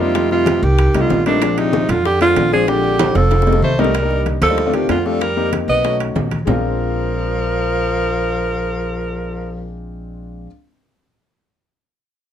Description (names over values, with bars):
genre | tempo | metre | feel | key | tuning
Afro-Cuban jazz | 190 BPM | 4/4 | straight | Bb mixolydian | A4 = 440 Hz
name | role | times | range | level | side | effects
clear alto saxophone | melody | 0.0-9.8 s | D4 to Eb5 | -18 LUFS | right 3 dB | none
clear tenor saxophone | second line | 0.0-9.8 s | Bb2 to Cb4 | -24 LUFS | left 4 dB | none
warm concert grand piano | accompaniment | 0.0-10.5 s | F3 to G4 | -22 LUFS | left 5 dB | none
upright bass | bass | 0.0-10.5 s | F1 to F2 | -21 LUFS | equal | none
bongos | percussion | 0.1-6.5 s | none | -27 LUFS | left 10 dB | none
congas | percussion | 0.1-6.5 s | none | -25 LUFS | equal | none
timbales | percussion | 0.2-6.5 s | none | -25 LUFS | right 6 dB | none
room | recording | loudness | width
light reverb | close, detailed microphones | -14 LUFS | side -9 dB against mid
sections
0.0-3.9 A section; 3.9-6.5 B section; 6.5-9.0 C section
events
drum fill 3.0-3.9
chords
0.2 F9; 1.4 Bb9; 3.3 F9; 3.9 Cm7; 4.6 Dm7; 5.2 F9sus4; 5.8 B9; 6.5 Bb9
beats
| 0.15 0.47 0.79 1.10 | 1.42 1.73 2.05 2.37 | 2.68 3.00 3.31 3.63 | 3.94 4.26 4.58 4.89 | 5.21 5.53 5.84 6.16 | 6.47 6.79 7.11 7.42 | 7.74 8.05 8.37 8.69